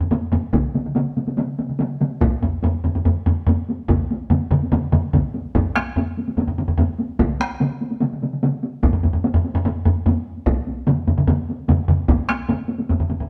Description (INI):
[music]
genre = japanese traditional, taiko drum ensemble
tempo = 146 BPM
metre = 4/4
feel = straight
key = none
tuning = none
[part]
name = taiko ensemble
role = percussion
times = 0.0-13.3 s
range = none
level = -26 LUFS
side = equal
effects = none
[part]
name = taiko ensemble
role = percussion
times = 0.0-13.3 s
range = none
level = -22 LUFS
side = equal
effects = none
[part]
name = taiko ensemble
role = percussion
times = 0.5-12.0 s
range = none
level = -25 LUFS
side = equal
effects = none
[part]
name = taiko ensemble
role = percussion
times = 0.5-12.2 s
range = none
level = -24 LUFS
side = equal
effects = none
[sound]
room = moderate stone room reverb, RT60 1.2 s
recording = band playing live in one room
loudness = -21 LUFS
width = mono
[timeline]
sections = 0.0-5.5 A section; 5.5-13.3 B section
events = speeding up 0.0-13.3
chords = none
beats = 0.12 | 0.54 0.96 1.38 1.80 | 2.22 2.64 3.06 3.47 | 3.89 4.30 4.72 5.13 | 5.55 5.96 6.38 6.79 | 7.20 7.61 8.02 8.43 | 8.84 9.25 9.66 10.06 | 10.47 10.88 11.28 11.69 | 12.09 12.49 12.90